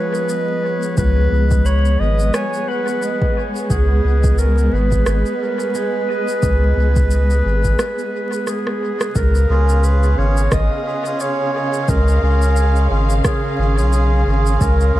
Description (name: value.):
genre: ambient dub.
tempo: 88 BPM.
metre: 4/4.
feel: swing 57% on 16ths.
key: unclear.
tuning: A4 = 440 Hz.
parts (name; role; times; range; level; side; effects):
warm clarinet; melody; 0.0-15.0 s; Ab4 to Eb5; -22 LUFS; right 1 dB; dub echo.
warm symphonic string section; sustained chords; 0.0-15.0 s; Db3 to F5; -24 LUFS; left 1 dB; none.
pedal steel guitar; arpeggios; 0.0-9.4 s; F3 to Cb6; -30 LUFS; left 4 dB; dub echo.
electronic shaker and rim click; drums; 0.1-14.9 s; none; -28 LUFS; right 1 dB; overdrive, dub echo.
warm sub bass; bass; 1.0-15.0 s; Ab1 to Db2; -15 LUFS; equal; none.
electronic kick drum; drums; 1.0-14.8 s; none; -19 LUFS; equal; overdrive.
melodica; stabs; 9.5-15.0 s; Db4 to Ab4; -24 LUFS; right 4 dB; dub echo.
room: light reverb, small room ambience.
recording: vinyl crackle.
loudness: -14 LUFS.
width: side -14 dB against mid.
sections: 0.0-9.2 A section; 9.2-15.0 B section.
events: break 7.8-9.2; drum fill 8.5-9.2.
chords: 0.0 Abm7.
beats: 0.29 | 0.97 1.66 2.34 3.02 | 3.70 4.38 5.07 5.75 | 6.43 7.11 7.79 8.47 | 9.16 9.84 10.52 11.20 | 11.88 12.57 13.25 13.93 | 14.61.